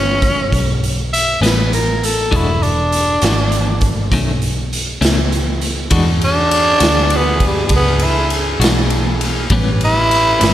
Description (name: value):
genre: slow blues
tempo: 67 BPM (dotted quarters)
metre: 12/8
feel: straight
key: E mixolydian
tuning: A4 = 441 Hz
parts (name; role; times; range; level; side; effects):
- growling tenor saxophone; melody; 0.0-10.5 s; G3 to E5; -16 LUFS; equal; none
- vintage muted fingered electric bass; bass; 0.0-10.5 s; E1 to E2; -18 LUFS; equal; none
- raw garage drum kit; drums; 0.2-10.5 s; hi-hat, kick drum, ride cymbal, snare drum; -17 LUFS; equal; none
- clean electric guitar; accompaniment; 1.4-10.5 s; A2 to F#4; -23 LUFS; left 3 dB; tremolo, slapback echo
- warm saxophone section; sustained chords; 5.9-10.5 s; C#4 to B4; -24 LUFS; right 1 dB; none
room: moderate lush hall reverb, RT60 1.9 s, studio reverb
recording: big arena sound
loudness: -13 LUFS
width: side -12 dB against mid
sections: 0.0-5.9 A section; 5.9-10.5 B section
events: tenor saxophone solo 5.9-10.5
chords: 0.0 A9; 2.3 E9; 4.1 B9; 5.9 E9; 9.5 A9